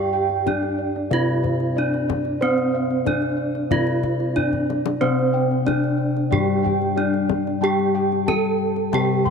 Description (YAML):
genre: Javanese gamelan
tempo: 92 BPM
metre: 4/4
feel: straight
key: unclear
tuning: A4 = 440 Hz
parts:
  - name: gamelan-type bronze metallophone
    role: melody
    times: 0.0-9.3 s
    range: C4-25c to A4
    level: -23 LUFS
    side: right 2 dB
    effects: none
  - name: gamelan-type bossed gongs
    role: arpeggios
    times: 0.0-9.3 s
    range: C5-25c to C6-25c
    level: -29 LUFS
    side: left 11 dB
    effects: none
  - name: gamelan-type bronze metallophone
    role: arpeggios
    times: 0.0-9.3 s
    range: C5-25c to A5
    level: -28 LUFS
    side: right 12 dB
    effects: tape echo
  - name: gamelan-type bossed gongs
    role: bass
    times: 0.0-9.3 s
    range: G2 to C5-25c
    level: -25 LUFS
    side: equal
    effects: none
  - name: kendang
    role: percussion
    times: 0.3-9.3 s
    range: none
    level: -29 LUFS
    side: left 7 dB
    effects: none
  - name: gamelan-type bronze metallophone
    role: accompaniment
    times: 5.0-9.3 s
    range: C3-25c to G3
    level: -24 LUFS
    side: left 12 dB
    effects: none
room: moderate plate reverb, RT60 3.7 s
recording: 1960s-style stereo with parts hard left and right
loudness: -19 LUFS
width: side -6 dB against mid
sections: 0.0-9.3 A section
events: drum fill 4.5-5.0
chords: none